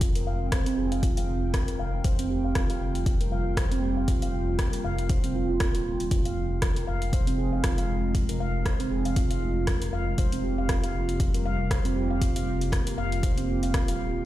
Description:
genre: afro house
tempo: 118 BPM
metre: 4/4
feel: swing 56% on 16ths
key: unclear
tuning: A4 = 440 Hz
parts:
  - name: ethereal airy pad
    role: sustained chords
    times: 0.0-14.3 s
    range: C3 to G5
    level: -34 LUFS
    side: equal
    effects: ensemble chorus, built-in reverb, sidechain pumping
  - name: dark detuned saw bass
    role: bass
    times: 0.0-14.2 s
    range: Eb1 to F1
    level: -30 LUFS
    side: equal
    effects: sidechain pumping
  - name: deep house drum kit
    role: drums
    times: 0.0-14.0 s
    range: hi-hat, rim click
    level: -35 LUFS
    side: equal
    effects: none
  - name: electronic kick drum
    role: drums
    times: 0.0-13.9 s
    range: none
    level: -26 LUFS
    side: equal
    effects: none
  - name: handpan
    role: arpeggios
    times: 0.2-13.9 s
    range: C4 to F5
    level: -31 LUFS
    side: right 3 dB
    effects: sidechain pumping, low-pass filter, digital delay
room: light reverb, digital ambience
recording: played on a big sound system in a bare room, large studio reverb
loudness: -24 LUFS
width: side -14 dB against mid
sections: 0.0-14.3 A section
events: filter sweep on handpan 0.0-14.3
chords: 0.0 Fm9; 2.0 C7sus4/F; 6.1 Fm9; 10.2 C7sus4/F

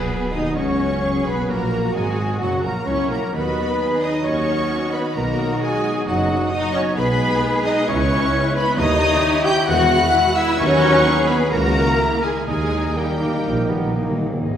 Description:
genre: classical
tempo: 131 BPM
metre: 4/4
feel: rubato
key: B major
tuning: A4 = 439 Hz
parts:
  - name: rich symphonic violin section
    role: melody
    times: 0.0-14.6 s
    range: D#5 to G6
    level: -28 LUFS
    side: left 1 dB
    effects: none
  - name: large flute ensemble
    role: second line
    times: 0.0-14.6 s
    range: F#4 to G5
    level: -28 LUFS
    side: left 2 dB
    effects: none
  - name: mellow clarinet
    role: second line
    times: 0.0-13.9 s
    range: F#4 to G5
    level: -27 LUFS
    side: left 1 dB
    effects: none
  - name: mellow cor anglais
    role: second line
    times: 0.0-13.9 s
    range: F#4 to G5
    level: -30 LUFS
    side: right 1 dB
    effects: none
  - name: warm symphonic violin section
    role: second line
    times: 0.0-14.6 s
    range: F#4 to G5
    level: -29 LUFS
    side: left 3 dB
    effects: none
  - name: warm symphonic viola section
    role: accompaniment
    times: 0.0-14.6 s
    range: F#3 to G#4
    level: -26 LUFS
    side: right 1 dB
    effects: none
  - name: warm French horn section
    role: sustained chords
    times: 0.0-14.1 s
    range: F#3 to E4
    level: -26 LUFS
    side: left 1 dB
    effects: none
  - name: concert harp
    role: arpeggios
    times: 0.0-14.6 s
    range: G#2 to E5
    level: -29 LUFS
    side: left 3 dB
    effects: none
  - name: dark trumpet section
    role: stabs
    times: 0.0-14.1 s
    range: F#4 to D#5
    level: -29 LUFS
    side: right 1 dB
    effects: none
  - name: dark symphonic double bass section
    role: bass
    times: 0.0-14.6 s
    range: F#1 to E2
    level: -26 LUFS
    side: right 2 dB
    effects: none
  - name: mellow tuba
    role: bass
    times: 0.0-13.9 s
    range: E1 to D#2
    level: -27 LUFS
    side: right 1 dB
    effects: none
  - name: warm symphonic cello section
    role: bass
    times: 0.0-14.6 s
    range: G#2 to G#4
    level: -28 LUFS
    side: right 1 dB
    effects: none
  - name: timpani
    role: percussion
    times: 8.8-9.4, 12.5-14.6 s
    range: G#2 to D#3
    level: -27 LUFS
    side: equal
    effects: none
  - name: warm bassoon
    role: accompaniment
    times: 13.0-14.4 s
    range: A#3 to B3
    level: -30 LUFS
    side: equal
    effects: none
room: wet recital hall reverb, RT60 1.5 s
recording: recorded in a church or concert hall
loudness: -17 LUFS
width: side -9 dB against mid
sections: 0.0-14.4 A section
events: timpani fill 12.5-14.4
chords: 0.0 B; 1.5 F#7; 3.3 B/D#; 5.2 B; 7.0 G#m/B; 7.9 C#m7; 8.8 D#7b9; 9.7 E; 10.6 B/D#; 11.5 A#dim/C#; 12.5 D#

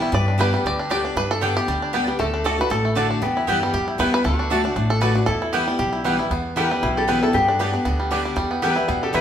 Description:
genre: bluegrass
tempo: 233 BPM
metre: 4/4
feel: swing 55% on 8ths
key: E minor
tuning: A4 = 440 Hz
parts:
  - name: bluegrass banjo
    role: melody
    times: 0.0-9.2 s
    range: G3 to D5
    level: -23 LUFS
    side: right 1 dB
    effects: none
  - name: lap resonator guitar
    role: second line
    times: 0.0-9.2 s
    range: E4 to B4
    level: -26 LUFS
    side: left 2 dB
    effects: none
  - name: picked steel-string acoustic guitar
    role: accompaniment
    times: 0.0-9.2 s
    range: E2 to G4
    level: -25 LUFS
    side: left 2 dB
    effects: none
  - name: upright bass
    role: bass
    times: 0.0-9.2 s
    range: A1 to G2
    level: -26 LUFS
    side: equal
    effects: none
  - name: mandolin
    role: stabs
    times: 0.4-9.2 s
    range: A3 to A5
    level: -26 LUFS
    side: right 2 dB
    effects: none
room: wet large studio reverb, RT60 1.1 s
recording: band playing live in one room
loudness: -18 LUFS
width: side -9 dB against mid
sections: 0.0-6.3 A section; 6.3-9.2 A section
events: five-string banjo solo 0.0-6.3; resonator guitar played with a steel bar solo 6.3-9.2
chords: 0.1 G; 2.2 D; 3.2 Em; 4.3 D; 5.3 Em; 7.3 G; 8.4 Em

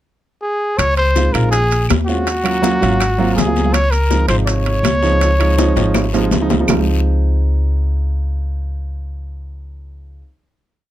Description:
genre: Afro-Cuban jazz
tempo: 163 BPM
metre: 4/4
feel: straight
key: Db major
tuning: A4 = 440 Hz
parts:
  - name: mellow trumpet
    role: melody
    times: 0.4-6.3 s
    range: Gb4 to Db5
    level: -18 LUFS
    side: equal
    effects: none
  - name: upright bass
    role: bass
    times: 0.8-10.2 s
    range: Ab1 to Eb2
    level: -17 LUFS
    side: equal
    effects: none
  - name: bongos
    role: percussion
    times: 0.8-6.8 s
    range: none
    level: -24 LUFS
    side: left 11 dB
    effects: none
  - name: claves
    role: percussion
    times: 0.8-6.8 s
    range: none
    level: -26 LUFS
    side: right 2 dB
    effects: none
  - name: congas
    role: percussion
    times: 0.8-6.8 s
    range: none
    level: -25 LUFS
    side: left 4 dB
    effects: none
  - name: guiro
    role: percussion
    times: 0.8-6.8 s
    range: none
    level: -32 LUFS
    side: left 7 dB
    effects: none
  - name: maracas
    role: percussion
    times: 0.8-6.8 s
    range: none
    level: -30 LUFS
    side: right 6 dB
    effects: none
  - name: timbales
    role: percussion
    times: 0.8-6.8 s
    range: none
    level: -23 LUFS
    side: right 8 dB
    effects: none
  - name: dark grand piano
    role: accompaniment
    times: 1.2-10.3 s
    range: C3 to F4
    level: -20 LUFS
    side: right 3 dB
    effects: none
room: little or no reverb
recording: close, detailed microphones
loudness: -13 LUFS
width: side -13 dB against mid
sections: 0.0-0.8 pickup bar; 0.8-6.7 A section; 6.7-9.6 final chord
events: drum fill 5.6-6.7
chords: 0.0 N.C.; 0.8 Bbm9; 2.3 Ebm9; 3.0 Ab13; 3.7 Dbmaj7

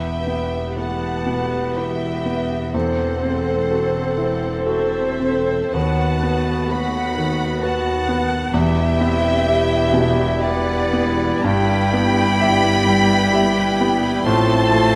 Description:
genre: classical, romantic movement for piano and orchestra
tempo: 53-67 BPM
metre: 3/4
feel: rubato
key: E minor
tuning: A4 = 440 Hz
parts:
  - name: rich symphonic violin section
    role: melody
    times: 0.0-15.0 s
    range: E5 to C6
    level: -30 LUFS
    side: equal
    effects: none
  - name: warm baby grand piano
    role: melody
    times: 0.0-15.0 s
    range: D#2 to E5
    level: -24 LUFS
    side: equal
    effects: none
  - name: clear clarinet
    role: second line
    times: 0.0-15.0 s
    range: C4 to B4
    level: -32 LUFS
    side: equal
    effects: none
  - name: concert flute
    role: second line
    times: 0.0-15.0 s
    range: C5 to A5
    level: -28 LUFS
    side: equal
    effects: none
  - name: rich symphonic violin section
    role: second line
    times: 0.0-15.0 s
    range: C5 to A5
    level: -30 LUFS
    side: equal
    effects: none
  - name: rich symphonic viola section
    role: accompaniment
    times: 0.0-15.0 s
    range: A3 to B4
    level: -31 LUFS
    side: equal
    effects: none
  - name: warm bassoon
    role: accompaniment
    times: 0.0-15.0 s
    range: F3 to C4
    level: -29 LUFS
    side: equal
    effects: none
  - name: mellow French horn section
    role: sustained chords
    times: 0.0-15.0 s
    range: F3 to B4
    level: -30 LUFS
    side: equal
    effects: none
  - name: clear symphonic cello section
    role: bass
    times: 0.0-15.0 s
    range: D#2 to A2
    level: -29 LUFS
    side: equal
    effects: none
  - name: rich symphonic double bass section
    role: bass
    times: 0.0-15.0 s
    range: E1 to D#2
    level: -30 LUFS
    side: equal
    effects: none
room: wet recital hall reverb, RT60 1.3 s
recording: none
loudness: -19 LUFS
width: mono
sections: 0.0-15.0 A section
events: none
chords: 0.0 Em; 2.7 F#m7b5/E; 5.8 B7/D#; 8.5 Em; 11.4 Em/G; 14.3 F/A

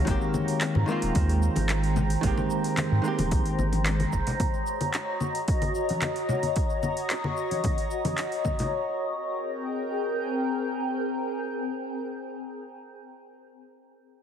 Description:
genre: sunset chillout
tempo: 111 BPM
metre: 4/4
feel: straight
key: Ab major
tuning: A4 = 440 Hz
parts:
  - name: vintage hollow-body jazz guitar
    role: accompaniment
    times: 0.0-4.1 s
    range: Eb3 to G4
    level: -28 LUFS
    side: moving between left 4 dB and right 6 dB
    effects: auto-pan, tape echo
  - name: shimmering ambient pad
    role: sustained chords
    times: 0.0-13.0 s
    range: Ab3 to Bb5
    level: -29 LUFS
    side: left 1 dB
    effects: chorus, built-in reverb, phaser
  - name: round analog bass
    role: bass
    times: 0.0-4.2 s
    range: Eb1 to Ab2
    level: -25 LUFS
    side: equal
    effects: none
  - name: electronic kick drum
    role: drums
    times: 0.1-8.6 s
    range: none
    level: -28 LUFS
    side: equal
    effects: overdrive
  - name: smooth R&B drum kit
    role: drums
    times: 0.1-8.7 s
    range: congas, handclaps, hi-hat, shaker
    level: -31 LUFS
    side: left 2 dB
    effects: none
  - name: congas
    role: percussion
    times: 1.6-8.7 s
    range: none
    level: -32 LUFS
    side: left 2 dB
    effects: none
room: light reverb, digital ambience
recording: heavily compressed radio sound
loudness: -25 LUFS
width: side -8 dB against mid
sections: 0.1-8.7 A section; 8.7-13.0 B section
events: none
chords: 0.1 Abmaj9; 4.1 Gb6; 8.7 Abmaj9

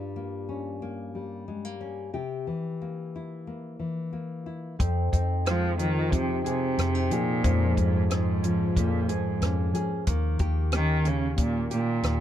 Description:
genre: acoustic folk-pop ballad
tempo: 91 BPM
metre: 4/4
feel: straight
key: F minor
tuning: A4 = 440 Hz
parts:
  - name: nylon-string guitar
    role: accompaniment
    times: 0.0-12.2 s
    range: F2 to Ab4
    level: -31 LUFS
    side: left 3 dB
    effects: none
  - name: concert harp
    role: arpeggios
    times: 4.8-12.2 s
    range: F3 to Ab4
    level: -33 LUFS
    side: left 1 dB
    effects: none
  - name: vintage muted fingered electric bass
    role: bass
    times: 4.8-12.2 s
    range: Eb2 to F3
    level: -28 LUFS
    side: equal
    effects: none
  - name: compact cocktail drum kit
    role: drums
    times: 4.8-12.2 s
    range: hi-hat, kick drum, rim click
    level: -28 LUFS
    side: equal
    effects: none
  - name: warm cello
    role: melody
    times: 5.5-12.2 s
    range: Ab2 to F3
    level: -27 LUFS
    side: right 3 dB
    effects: none
room: little or no reverb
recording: dark, warm production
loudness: -25 LUFS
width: side -11 dB against mid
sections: 0.0-4.8 A section; 4.8-12.2 B section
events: none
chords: 0.0 Gm7b5; 2.1 C7; 4.8 Fm7; 7.4 Bbm7/F; 10.1 Eb7

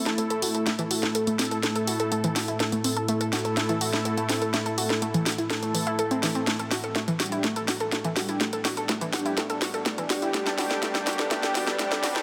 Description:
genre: melodic techno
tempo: 124 BPM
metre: 4/4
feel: straight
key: A dorian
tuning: A4 = 440 Hz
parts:
  - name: deep dark ambient pad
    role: sustained chords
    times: 0.5-12.2 s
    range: A3 to E5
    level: -38 LUFS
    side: equal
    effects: chorus, built-in reverb
  - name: brassy analog pad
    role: stabs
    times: 0.0-12.2 s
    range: G3 to A4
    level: -32 LUFS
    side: equal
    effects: chorus, dub echo
  - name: warbly dusty pluck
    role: arpeggios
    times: 0.1-12.2 s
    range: E3 to A4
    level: -32 LUFS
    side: equal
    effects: chorus, vintage 12-bit sampler grit, dub echo
  - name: house drum kit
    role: drums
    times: 0.1-12.2 s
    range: hi-hat, snare drum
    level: -30 LUFS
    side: equal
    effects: overdrive
  - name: riser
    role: sound effects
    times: 9.8-12.2 s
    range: none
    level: -45 LUFS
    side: equal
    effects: none
room: moderate huge ambient reverb, RT60 4.7 s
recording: dense, heavily limited modern master, high-pass filter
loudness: -26 LUFS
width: mono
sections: 0.0-12.2 A section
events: build-up 0.0-12.2; drum fill 0.0-12.2; filter sweep on analog synth pad 0.0-12.2; filter sweep on ambient pad 0.0-12.2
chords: 0.0 Am; 6.5 G

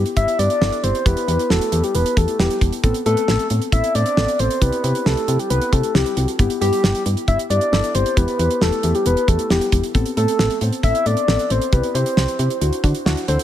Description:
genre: synth-pop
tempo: 135 BPM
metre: 4/4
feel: straight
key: unclear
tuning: A4 = 440 Hz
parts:
  - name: muted felt-like synth keys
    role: accompaniment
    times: 0.0-13.4 s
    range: B3 to F#5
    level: -25 LUFS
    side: left 3 dB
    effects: chorus
  - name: solid FM bass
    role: bass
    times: 0.0-13.4 s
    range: E1 to D3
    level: -20 LUFS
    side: equal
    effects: none
  - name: damped 70s drum kit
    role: drums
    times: 0.1-13.4 s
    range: hi-hat, kick drum, snare drum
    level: -21 LUFS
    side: right 1 dB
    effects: none
  - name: soft octave-layered synth lead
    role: melody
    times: 0.2-13.4 s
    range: G4 to E5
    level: -20 LUFS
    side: left 1 dB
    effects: chorus, tape echo
room: light reverb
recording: none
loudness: -16 LUFS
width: side -11 dB against mid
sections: 0.0-13.4 A section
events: synth keys fill 12.8-13.4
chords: 0.0 G6; 1.1 Em; 2.8 Amadd9; 4.6 C; 6.4 G6; 8.2 Em; 9.9 Amadd9; 11.7 C; 12.6 Dadd9

